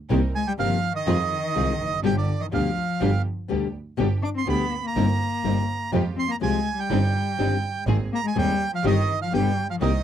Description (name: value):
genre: tango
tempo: 124 BPM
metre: 4/4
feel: rubato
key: C minor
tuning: A4 = 443 Hz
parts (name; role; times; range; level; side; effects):
- nylon-string guitar; accompaniment; 0.1-9.9 s; B2 to Ab4; -25 LUFS; left 10 dB; none
- clear studio string section; stabs; 0.1-10.0 s; Ab3 to Bb4; -33 LUFS; right 6 dB; none
- rich double bass; bass; 0.1-10.0 s; F1 to F2; -25 LUFS; right 2 dB; none
- warm cello; second line; 0.3-10.0 s; D3 to D4; -29 LUFS; left 6 dB; none
- bandoneon; melody; 0.4-10.0 s; D5 to D6; -27 LUFS; right 6 dB; none
room: little or no reverb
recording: dry, close 1970s-style studio recording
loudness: -21 LUFS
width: side -10 dB against mid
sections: 0.0-10.0 A section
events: none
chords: 0.1 Cm7; 1.1 Fm7; 2.0 G; 5.0 Cm7/G; 5.9 Fmadd9; 6.9 Cmadd9/G; 7.9 Abadd9; 8.8 Cm/G; 9.3 G